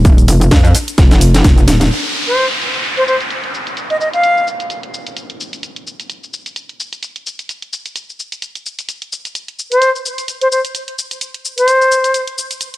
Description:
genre	bass house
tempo	129 BPM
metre	4/4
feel	swing 57% on 16ths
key	unclear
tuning	A4 = 440 Hz
part	metallic wobble bass	bass	0.0-1.9 s	Eb1 to F2	-10 LUFS	equal	chorus, tube saturation, sidechain pumping
part	house drum kit	drums	0.0-12.8 s	crash cymbal, hi-hat, shaker, snare drum	-21 LUFS	equal	overdrive, low-pass filter on hats, low-pass filter on perc, low-pass filter on snare, low-pass filter on cymbals, low-pass filter on room
part	electronic kick drum	drums	0.1-1.6 s	none	-9 LUFS	equal	overdrive
part	downlifter	sound effects	1.9-5.6 s	none	-20 LUFS	equal	none
part	bright reedy concert flute	melody	2.3-4.5, 9.7-12.2 s	C5 to F5	-14 LUFS	left 1 dB	tape echo
room	digital ambience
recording	none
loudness	-11 LUFS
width	side -16 dB against mid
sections	0.0-1.9 A section; 1.9-12.8 B section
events	drop 0.0-1.9; drum fill 1.0-1.9; band accent 1.8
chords	0.0 F5; 1.9 N.C.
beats	| 0.05 0.52 0.98 1.45 | 1.91 2.38 2.84 3.31 | 3.77 4.24 4.70 5.17 | 5.63 6.10 6.56 7.03 | 7.49 7.96 8.42 8.89 | 9.35 9.82 10.28 10.75 | 11.21 11.68 12.14 12.61

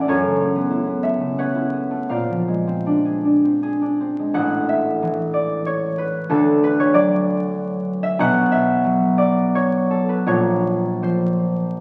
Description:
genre	classical, solo harp piece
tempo	77-98 BPM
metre	3/4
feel	rubato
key	A major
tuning	A4 = 440 Hz
part	concert harp	solo	0.0-11.8 s	A1 to A5	-20 LUFS	equal	none
room	wet recital hall reverb, RT60 1.6 s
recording	very old 78 rpm record, vinyl crackle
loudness	-20 LUFS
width	mono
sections	0.0-4.4 A section; 4.4-11.8 B section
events	none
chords	0.1 F#m11; 2.1 Bb9; 4.4 Amaj7; 6.3 Dmaj9; 8.2 Bm11; 10.3 Bbadd9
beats	| 0.06 0.70 1.37 | 2.10 2.88 3.64 | 4.37 5.04 5.67 | 6.31 6.94 7.56 | 8.20 8.85 9.55 | 10.28 11.03 11.77

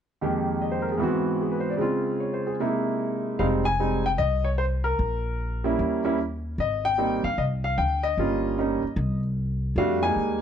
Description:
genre	jazz piano trio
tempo	151 BPM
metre	4/4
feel	swing 65% on 8ths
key	F minor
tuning	A4 = 438 Hz
part	clear concert grand piano	melody	0.2-10.4 s	F2 to Ab5	-24 LUFS	equal	none
part	upright bass	bass	3.4-10.4 s	F1 to F2	-27 LUFS	equal	none
room	light reverb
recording	dark, warm production, nothing above 10.3 kHz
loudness	-23 LUFS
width	side -8 dB against mid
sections	0.2-3.4 A section; 3.4-10.4 B section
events	none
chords	0.2 Fm11; 1.0 Ab7alt; 1.8 Dbmaj7; 2.6 C7alt; 3.4 Fm7; 5.0 N.C.; 5.8 Eb7b9; 6.6 Abmaj7; 8.2 Gm7b5; 9.0 N.C.; 9.8 Fm11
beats	| 0.21 0.61 1.01 1.41 | 1.81 2.21 2.60 3.00 | 3.40 3.80 4.20 4.60 | 4.99 5.39 5.79 6.19 | 6.59 6.99 7.38 7.78 | 8.18 8.58 8.98 9.38 | 9.77 10.17

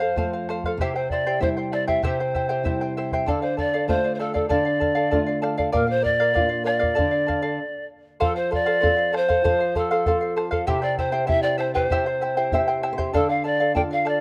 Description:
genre	andean folk, Andean ensemble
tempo	97 BPM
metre	2/4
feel	straight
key	unclear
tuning	A4 = 440 Hz
part	breathy reedy pan flute	melody	0.0-14.2 s	G4 to G5	-26 LUFS	equal	none
part	charango	accompaniment	0.0-14.2 s	E4 to G5	-28 LUFS	equal	none
part	nylon-string guitar	accompaniment	0.0-14.2 s	F2 to E5	-30 LUFS	equal	none
part	bombo	percussion	0.2-14.2 s	none	-31 LUFS	equal	none
room	light reverb, small room ambience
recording	rough home demo mix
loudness	-23 LUFS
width	mono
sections	0.0-8.2 A section; 8.2-14.2 A section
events	stop 7.6-8.2; nylon-string guitar fill 12.2-13.1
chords	0.0 F; 0.8 C; 3.3 Dm; 5.7 Bb; 7.0 Dm; 8.2 F; 10.7 C; 13.1 Dm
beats	0.17 | 0.79 1.41 | 2.03 2.65 | 3.27 3.88 | 4.50 5.12 | 5.74 6.36 | 6.97 7.59 | 8.21 8.83 | 9.44 10.06 | 10.68 11.29 | 11.91 12.52 | 13.14 13.75

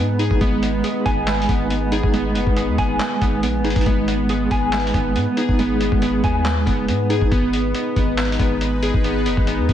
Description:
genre	hip hop, trap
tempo	139 BPM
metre	4/4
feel	half-time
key	G# minor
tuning	A4 = 441 Hz
part	mellow electric guitar	accompaniment	0.0-7.3 s	G#3 to G#5	-22 LUFS	right 3 dB	tremolo, low-pass filter
part	sweeping resonant pad	sustained chords	0.0-9.7 s	G#3 to B4	-25 LUFS	left 1 dB	chorus
part	glassy digital keys	arpeggios	0.0-9.7 s	B3 to G#4	-24 LUFS	left 1 dB	chorus, low-pass filter, diffuse ambient delay
part	long sustained 808-style bass	bass	0.0-9.7 s	F#1 to G#2	-23 LUFS	equal	none
part	lo-fi sampler-style drum kit	drums	0.2-9.7 s	handclaps, hi-hat, kick drum	-22 LUFS	equal	none
part	swell	sound effects	7.3-9.7 s	none	barely audible	none	none
room	moderate lush hall reverb, RT60 1.7 s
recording	dreamy mix soaked in reverb, nothing above 10.6 kHz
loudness	-17 LUFS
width	side -10 dB against mid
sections	0.0-9.7 A section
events	none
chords	0.0 G#m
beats	| 0.41 0.84 1.27 1.70 | 2.14 2.57 3.00 3.43 | 3.86 4.29 4.73 5.16 | 5.59 6.02 6.45 6.88 | 7.32 7.75 8.18 8.61 | 9.04 9.47

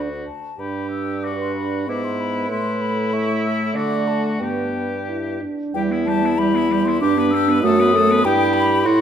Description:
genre	quick classical-period movement for wind quintet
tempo	89-99 BPM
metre	2/4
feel	rubato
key	G major, E minor from 5.7 s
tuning	A4 = 439 Hz
part	clear oboe	second line	0.0-9.0 s	E4 to B4	-28 LUFS	left 3 dB	none
part	clear clarinet	accompaniment	0.0-9.0 s	G3 to E5	-24 LUFS	right 6 dB	none
part	warm French horn	accompaniment	0.0-9.0 s	A3 to A4	-22 LUFS	equal	none
part	warm bassoon	bass	0.0-9.0 s	D2 to D3	-25 LUFS	right 2 dB	none
part	mellow hollow concert flute	melody	0.3-9.0 s	G5 to E6	-24 LUFS	left 6 dB	none
room	wet recital hall reverb, RT60 1.5 s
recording	none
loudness	-17 LUFS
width	side -8 dB against mid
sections	0.0-5.7 A section; 5.7-9.0 B section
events	none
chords	0.0 D; 0.6 G; 1.9 E/G#; 2.5 Am; 3.8 D; 4.4 G; 5.7 Em; 7.0 G; 7.6 B7/F#; 8.2 Em/G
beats	| 0.60 1.25 | 1.89 2.51 | 3.13 3.76 | 4.41 5.08 | 5.75 6.39 | 7.01 7.63 | 8.25 8.86

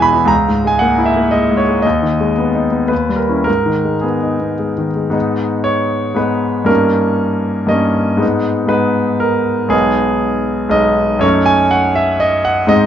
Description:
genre	classical, romantic character piece for solo piano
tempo	104-122 BPM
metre	3/4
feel	rubato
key	G# minor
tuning	A4 = 440 Hz
part	bright grand piano	solo	0.0-12.9 s	B1 to B5	-12 LUFS	equal	none
room	light reverb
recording	dark, warm production, nothing above 7.5 kHz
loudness	-12 LUFS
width	side -9 dB against mid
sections	0.0-5.1 A section; 5.1-12.9 B section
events	none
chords	0.3 A#m7b5/C#; 1.8 G#m/D#; 2.9 D#7b9; 3.5 G#m; 6.7 D#7/G; 8.2 G#m; 9.7 G#m/B; 11.2 D#m7b5/F#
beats	| 0.29 0.81 1.32 | 1.84 2.37 2.91 | 3.47 4.04 4.60 | 5.15 5.67 6.18 | 6.69 7.21 7.72 | 8.22 8.72 9.23 | 9.73 10.23 10.73 | 11.23 11.73 12.22 | 12.71

